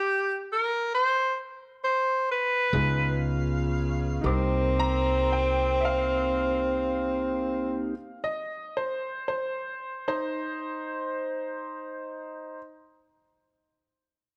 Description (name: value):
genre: slow blues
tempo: 38-48 BPM (dotted quarters)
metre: 12/8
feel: straight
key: C minor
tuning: A4 = 440 Hz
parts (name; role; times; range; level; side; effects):
- clear tenor saxophone; melody; 0.0-7.9 s; C4 to C5; -28 LUFS; equal; none
- warm upright piano; accompaniment; 2.7-7.9 s; Eb4 to D6; -39 LUFS; equal; none
- mellow tonewheel organ; sustained chords; 2.7-8.0 s; Bb3 to Ab4; -36 LUFS; equal; slow rotary speaker
- warm saxophone section; sustained chords; 2.7-7.9 s; Bb4 to F5; -44 LUFS; equal; none
- upright bass; bass; 2.7-7.9 s; C2 to Db2; -31 LUFS; equal; none
- clear upright piano; second line; 4.8-12.6 s; Eb4 to Bb5; -34 LUFS; equal; none
room: moderate echo chamber reverb, RT60 1.9 s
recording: none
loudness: -28 LUFS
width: mono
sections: 0.0-4.2 A section; 4.2-10.6 B section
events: slowing down 0.0-4.2; stop 0.0-2.7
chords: 0.0 N.C.; 2.7 Db7; 4.2 Cm7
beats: 0.04 1.35 2.74 | 4.25 5.83 7.41 8.99